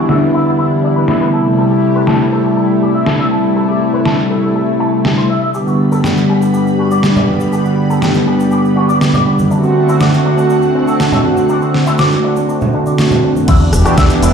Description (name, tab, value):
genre	nu-disco, nu disco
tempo	121 BPM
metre	4/4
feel	straight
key	unclear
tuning	A4 = 440 Hz
part	warm analog pad	accompaniment	0.0-14.3 s	C3 to G4	-13 LUFS	equal	chorus, sidechain pumping, ping-pong delay
part	string machine, full ensemble	sustained chords	0.0-13.4 s	D3 to B5	-19 LUFS	left 1 dB	ensemble chorus, sidechain pumping
part	electric guitar with an envelope filter	riff	0.0-14.3 s	A3 to A5	-20 LUFS	left 2 dB	lush chorus, low-pass filter, ping-pong delay
part	downlifter	sound effects	0.0-1.6 s	none	barely audible	none	none
part	pop drum kit	drums	0.1-14.3 s	cabasa, crash cymbal, hi-hat, rim click, snare drum	-17 LUFS	equal	overdrive, low-pass filter on hats, low-pass filter on snare, low-pass filter on cymbals, low-pass filter on perc, low-pass filter on room
part	tube shaker, congas and bongos	percussion	5.5-13.5 s	none	-21 LUFS	right 3 dB	none
part	fingered electric bass with an envelope filter	bass	13.5-14.3 s	E1 to E2	-12 LUFS	equal	none
part	electronic kick drum	drums	13.5-14.1 s	none	-12 LUFS	equal	overdrive
room	moderate plate reverb, RT60 1.4 s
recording	played on a big sound system in a bare room, stone room reverb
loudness	-10 LUFS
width	side -6 dB against mid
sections	0.0-13.5 A section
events	filter sweep on drum 0.0-13.5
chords	0.0 Em7; 1.3 Am7; 5.5 G; 9.5 D7; 13.5 Em7